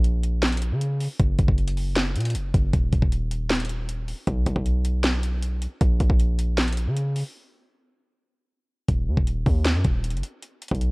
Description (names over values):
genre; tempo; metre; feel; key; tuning
hip hop, trap; 156 BPM; 4/4; half-time; unclear; A4 = 440 Hz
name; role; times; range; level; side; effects
hard-hitting 808-style bass; bass; 0.0-10.9 s; Eb1 to Db3; -23 LUFS; equal; none
trap drum kit; drums; 0.0-10.9 s; handclaps, hi-hat, kick drum, snare drum; -24 LUFS; equal; none
room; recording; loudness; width
little or no reverb; worn, warbling old tape, cassette tape, warbly pitch drift; -21 LUFS; side -28 dB against mid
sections
0.0-8.9 A section; 8.9-10.9 B section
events
break 7.3-8.9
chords
none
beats
0.04 0.42 0.81 | 1.20 1.58 1.96 2.35 | 2.73 3.12 3.50 3.89 | 4.27 4.66 5.04 5.42 | 5.81 6.20 6.58 6.96 | 7.35 7.73 8.12 8.50 | 8.89 9.27 9.66 10.04 | 10.43 10.81